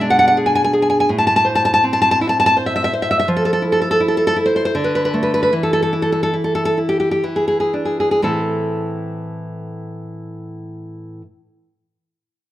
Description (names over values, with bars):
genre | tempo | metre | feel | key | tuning
romantic piece for solo classical guitar | 59-85 BPM | 3/4 | rubato | A minor | A4 = 440 Hz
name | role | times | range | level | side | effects
nylon-string guitar | solo | 0.0-11.2 s | A2 to A5 | -15 LUFS | equal | none
room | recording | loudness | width
moderate recital hall reverb, RT60 1.4 s | minimal, uncompressed stereo recording | -14 LUFS | side -14 dB against mid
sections
0.0-8.2 A section; 8.2-11.1 B section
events
slowing down 2.2-8.2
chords
0.0 G#dim/B; 1.1 Am; 3.3 Fmaj7; 4.7 D5; 5.5 N.C.; 7.2 E7; 8.2 Am